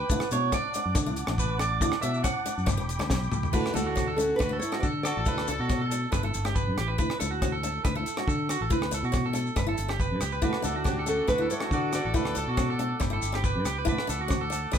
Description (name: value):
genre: highlife guitar band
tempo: 139 BPM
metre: 4/4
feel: straight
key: D major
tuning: A4 = 442 Hz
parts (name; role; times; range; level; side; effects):
- mellow tonewheel organ; sustained chords; 0.0-3.5, 10.4-14.8 s; F#5 to D6; -37 LUFS; equal; slow rotary speaker
- electric guitar at the edge of break-up; arpeggios; 0.0-14.8 s; F#4 to F#5; -31 LUFS; right 4 dB; none
- fingered electric bass; bass; 0.0-14.8 s; E1 to D3; -31 LUFS; left 1 dB; none
- picked steel-string acoustic guitar; accompaniment; 0.1-14.8 s; A3 to E4; -34 LUFS; left 2 dB; none
- tight funk drum kit; drums; 0.1-14.8 s; crash cymbal, hi-hat, kick drum, rim click, snare drum, toms; -30 LUFS; equal; none
- maracas; percussion; 0.1-14.8 s; none; -40 LUFS; left 7 dB; none
- nylon-string guitar; melody; 3.5-6.3, 10.4-13.2 s; A3 to D5; -30 LUFS; equal; none
- brilliant trumpet; second line; 3.5-6.3, 10.4-13.2 s; D4 to A4; -38 LUFS; left 3 dB; none
room: moderate studio reverb, RT60 0.8 s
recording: band playing live in one room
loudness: -25 LUFS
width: side -8 dB against mid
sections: 0.0-3.5 A section; 3.5-14.8 B section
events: clean electric guitar solo 0.0-3.5; drum fill 3.1-3.5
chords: 0.1 D; 2.7 G; 3.5 D; 6.1 G; 7.0 D; 9.6 G; 10.4 D; 13.0 G; 13.9 D